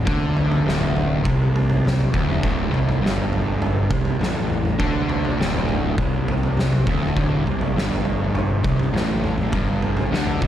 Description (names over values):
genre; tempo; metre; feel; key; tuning
stoner and doom metal; 101 BPM; 4/4; straight; unclear; A4 = 440 Hz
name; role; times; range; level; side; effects
fuzz guitar; riff; 0.0-10.5 s; D2 to D3; -22 LUFS; equal; distortion
fuzz fingered electric bass; bass; 0.0-10.5 s; D1 to D2; -25 LUFS; equal; overdrive
oversized low-tuned drum kit; drums; 0.1-10.5 s; kick drum, snare drum, toms; -23 LUFS; equal; none
room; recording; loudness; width
light reverb; none; -18 LUFS; side -11 dB against mid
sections
0.0-10.5 A section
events
none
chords
0.0 D5